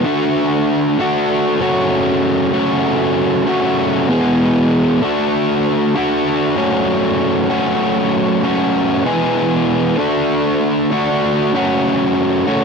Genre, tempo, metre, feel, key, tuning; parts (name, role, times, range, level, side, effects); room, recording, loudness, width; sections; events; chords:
rock; 97 BPM; 4/4; straight; F# minor; A4 = 440 Hz
overdriven electric guitar; solo; 0.0-12.6 s; E2 to G#4; -14 LUFS; equal
light reverb; dry, close 1970s-style studio recording; -14 LUFS; side -5 dB against mid
0.0-12.6 A section
0.1 D; 1.6 F#m; 4.1 E; 5.0 D; 6.6 F#m; 9.1 E; 10.0 D; 11.5 F#m